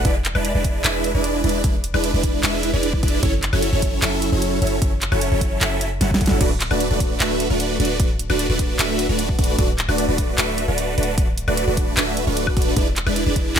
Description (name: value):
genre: future bass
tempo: 151 BPM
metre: 4/4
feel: half-time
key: D lydian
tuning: A4 = 439 Hz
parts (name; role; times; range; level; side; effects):
- supersaw chords; riff; 0.0-13.6 s; F#3 to F#5; -21 LUFS; right 1 dB; phaser, sidechain pumping
- warm 808-style bass; bass; 0.0-13.6 s; D1 to F#1; -24 LUFS; equal; sidechain pumping
- pop drum kit; drums; 0.0-13.6 s; crash cymbal, handclaps, hi-hat, snare drum, woodblock; -23 LUFS; equal; studio reverb
- electronic kick drum; drums; 0.1-13.4 s; none; -21 LUFS; equal; studio reverb
room: digital ambience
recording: none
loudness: -17 LUFS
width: side -8 dB against mid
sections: 0.0-13.6 A section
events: drum fill 6.0-6.4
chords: 0.1 E7; 3.2 F#m7; 6.4 D6; 12.8 E7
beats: | 0.05 0.45 0.84 1.24 | 1.64 2.04 2.43 2.83 | 3.23 3.63 4.02 4.42 | 4.82 5.21 5.61 6.01 | 6.41 6.80 7.20 7.60 | 8.00 8.39 8.79 9.19 | 9.59 9.98 10.38 10.78 | 11.18 11.57 11.97 12.37 | 12.77 13.16 13.56